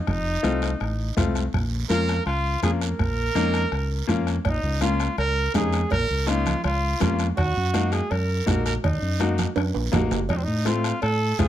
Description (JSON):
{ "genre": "latin, cumbia", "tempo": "164 BPM", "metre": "4/4", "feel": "straight", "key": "Bb harmonic minor", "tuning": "A4 = 436 Hz", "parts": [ { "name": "clear trumpet", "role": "melody", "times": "0.0-11.5 s", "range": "C4 to Bb4", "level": "-27 LUFS", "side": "right 2 dB", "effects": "none" }, { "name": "fingered electric bass", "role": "bass", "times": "0.1-11.5 s", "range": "F1 to A2", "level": "-25 LUFS", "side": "equal", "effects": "none" }, { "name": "bombo", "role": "percussion", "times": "0.1-11.5 s", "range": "none", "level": "-29 LUFS", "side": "equal", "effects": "none" }, { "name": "congas", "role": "percussion", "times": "0.1-11.5 s", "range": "none", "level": "-31 LUFS", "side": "right 3 dB", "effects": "none" }, { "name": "guiro", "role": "percussion", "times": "0.1-11.5 s", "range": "none", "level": "-38 LUFS", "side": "right 14 dB", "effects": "none" }, { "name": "bright upright piano", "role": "accompaniment", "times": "0.4-11.5 s", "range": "A3 to Gb4", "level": "-28 LUFS", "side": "left 6 dB", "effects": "none" }, { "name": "cowbell and timbales", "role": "percussion", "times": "4.5-11.5 s", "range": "none", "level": "-31 LUFS", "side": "right 7 dB", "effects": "none" } ], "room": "studio ambience", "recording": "dry, close 1970s-style studio recording", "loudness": "-21 LUFS", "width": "side -12 dB against mid", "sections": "0.0-4.5 A section; 4.5-11.5 B section", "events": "drum fill 9.6-10.3", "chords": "0.1 F7; 1.5 Bbm; 7.4 Ebm; 10.3 F7" }